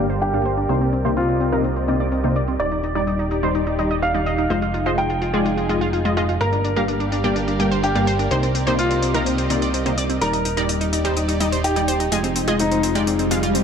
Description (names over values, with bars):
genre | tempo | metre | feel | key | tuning
progressive house | 126 BPM | 4/4 | straight | F dorian | A4 = 440 Hz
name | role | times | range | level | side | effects
supersaw pad | sustained chords | 0.0-13.6 s | G3 to F5 | -26 LUFS | equal | vintage 12-bit sampler grit
analog pluck | arpeggios | 0.0-13.6 s | C4 to Eb5 | -26 LUFS | equal | chorus, ping-pong delay
wide unison pluck | stabs | 0.0-13.4 s | G2 to G5 | -23 LUFS | left 1 dB | ping-pong delay
fat analog bass | bass | 0.0-13.6 s | Eb1 to C2 | -25 LUFS | right 1 dB | none
electronic hi-hat | drums | 0.1-13.6 s | none | -30 LUFS | left 2 dB | overdrive
warm grand piano | melody | 0.2-13.6 s | Eb4 to G5 | -25 LUFS | equal | ping-pong delay
swell | sound effects | 13.3-13.6 s | none | -23 LUFS | equal | none
room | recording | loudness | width
light reverb | low-pass filter | -18 LUFS | side -7 dB against mid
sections
0.0-13.6 A section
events
filter sweep on synth pluck 0.0-13.6; filter sweep 0.0-13.6; swell 13.3-13.6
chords
0.0 Gm7; 0.7 Cm7; 2.6 Ebmaj7; 4.5 Fm7; 6.4 Gm7; 8.3 Cm7; 10.2 Ebmaj7; 12.1 Fm7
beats
0.21 | 0.69 1.17 1.64 2.12 | 2.60 3.07 3.55 4.03 | 4.50 4.98 5.45 5.93 | 6.41 6.88 7.36 7.83 | 8.31 8.79 9.26 9.74 | 10.21 10.69 11.17 11.64 | 12.12 12.60 13.07 13.55